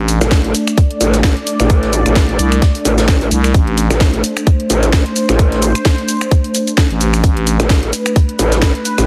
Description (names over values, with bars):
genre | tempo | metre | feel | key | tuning
bass house | 130 BPM | 4/4 | swing 56% on 16ths | A minor | A4 = 440 Hz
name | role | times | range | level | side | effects
sweeping resonant pad | sustained chords | 0.0-9.1 s | A3 to D5 | -21 LUFS | equal | chorus, sidechain pumping
growling FM bass | bass | 0.0-3.9, 6.9-7.6 s | A1 to C2 | -16 LUFS | equal | overdrive, sidechain pumping
garage drum kit | drums | 0.1-9.1 s | finger snaps, hi-hat, shaker, snare drum | -22 LUFS | equal | overdrive
soft brush drum kit | drums | 0.1-9.1 s | hi-hat, snare drum | -34 LUFS | equal | none
growl bass | bass | 0.2-9.1 s | A1 | -17 LUFS | equal | chorus, overdrive, sidechain pumping
electronic kick drum | drums | 0.3-8.7 s | none | -14 LUFS | equal | overdrive
room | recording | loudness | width
digital ambience | heavily compressed radio sound, multiband compression | -14 LUFS | mono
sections
0.0-9.1 A section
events
none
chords
0.0 Am